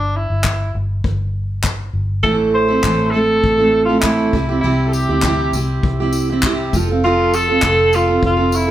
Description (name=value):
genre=acoustic pop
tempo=100 BPM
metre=4/4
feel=straight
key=C major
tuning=A4 = 440 Hz
part: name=warm tenor saxophone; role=melody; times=0.0-8.7 s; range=D4 to C5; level=-18 LUFS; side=left 1 dB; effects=none
part: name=vintage muted fingered electric bass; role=bass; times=0.0-8.7 s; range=F1 to D2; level=-21 LUFS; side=equal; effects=none
part: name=unplugged drum kit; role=drums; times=0.4-8.7 s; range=handclaps, kick drum, tambourine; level=-21 LUFS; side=left 2 dB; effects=none
part: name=picked steel-string acoustic guitar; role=accompaniment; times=2.2-8.7 s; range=A2 to A4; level=-16 LUFS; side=right 3 dB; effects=none
room=wet studio reverb, RT60 0.7 s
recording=heard from further back in the room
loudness=-14 LUFS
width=side -12 dB against mid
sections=0.0-8.7 A section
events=none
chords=0.0 G5; 2.2 Am; 4.3 C; 6.7 F